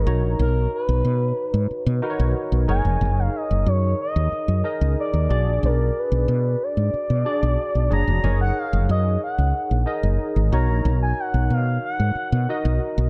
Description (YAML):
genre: pop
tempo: 92 BPM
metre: 4/4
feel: straight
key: unclear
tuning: A4 = 440 Hz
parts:
  - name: expressive synth lead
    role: melody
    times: 0.0-12.6 s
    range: A#4 to A#5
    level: -28 LUFS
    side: equal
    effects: chorus
  - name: barky tine electric piano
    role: accompaniment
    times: 0.0-13.1 s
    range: D4 to A#5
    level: -31 LUFS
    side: equal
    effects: overdrive, analog chorus
  - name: woody fretless electric bass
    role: bass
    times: 0.0-13.1 s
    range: E#1 to B2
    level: -22 LUFS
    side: equal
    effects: none
room: digital ambience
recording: none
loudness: -22 LUFS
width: mono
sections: 0.0-13.1 A section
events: none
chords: 0.1 Bmaj7; 2.7 F#69; 5.3 Bm6; 8.2 F#69; 10.5 Bmaj7